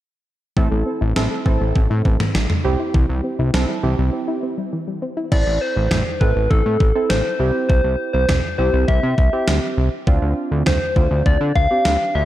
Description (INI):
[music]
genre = synth-pop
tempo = 101 BPM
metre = 4/4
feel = straight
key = unclear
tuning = A4 = 435 Hz
[part]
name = warm analog keys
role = accompaniment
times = 0.6-12.2 s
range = C4 to A4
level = -25 LUFS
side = right 2 dB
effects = chorus
[part]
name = soft round pluck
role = arpeggios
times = 0.6-5.3 s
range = E3 to E4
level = -27 LUFS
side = left 2 dB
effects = chorus, tape echo
[part]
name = fat analog bass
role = bass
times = 0.6-12.2 s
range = A1 to D3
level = -19 LUFS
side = equal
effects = none
[part]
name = gated 80s digital drum machine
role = drums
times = 0.6-12.0 s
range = crash cymbal, kick drum, snare drum, toms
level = -19 LUFS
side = equal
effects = gated reverb, gated reverb snare
[part]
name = soft struck synth lead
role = melody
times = 5.3-12.2 s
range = A4 to F5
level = -21 LUFS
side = left 1 dB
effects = chorus, tape echo
[sound]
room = light reverb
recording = dark, warm production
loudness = -16 LUFS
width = side -14 dB against mid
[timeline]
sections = 0.6-5.3 A section; 5.3-12.2 B section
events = break 4.1-5.3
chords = 0.6 Am; 2.6 C; 5.3 Am; 7.4 C; 10.1 Dm7